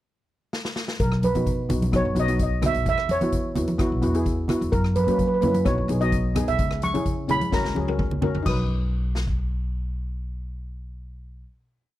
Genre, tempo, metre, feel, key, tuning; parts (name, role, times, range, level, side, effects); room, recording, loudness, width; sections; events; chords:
calypso; 129 BPM; 4/4; straight; B major; A4 = 439 Hz
street-band drum kit; drums; 0.5-9.4 s; crash cymbal, hi-hat, kick drum, rim click, snare drum, toms; -28 LUFS; equal
steel pan; melody; 1.0-11.4 s; A#4 to D#6; -26 LUFS; right 2 dB
upright bass; bass; 1.0-11.4 s; B1 to F#3; -26 LUFS; equal
congas; percussion; 1.2-8.7 s; -30 LUFS; right 2 dB
steel pan; accompaniment; 1.4-11.5 s; A#3 to B4; -27 LUFS; left 2 dB
little or no reverb; dry, close 1970s-style studio recording; -21 LUFS; side -14 dB against mid
0.0-1.0 pickup bar; 1.0-8.5 verse; 8.5-12.0 final chord
drum fill 0.5-1.0, 7.5-8.5
0.0 N.C.; 1.0 B; 2.9 Esus2; 4.7 F#; 5.7 B; 6.6 C#m; 7.5 F#/C#; 8.5 B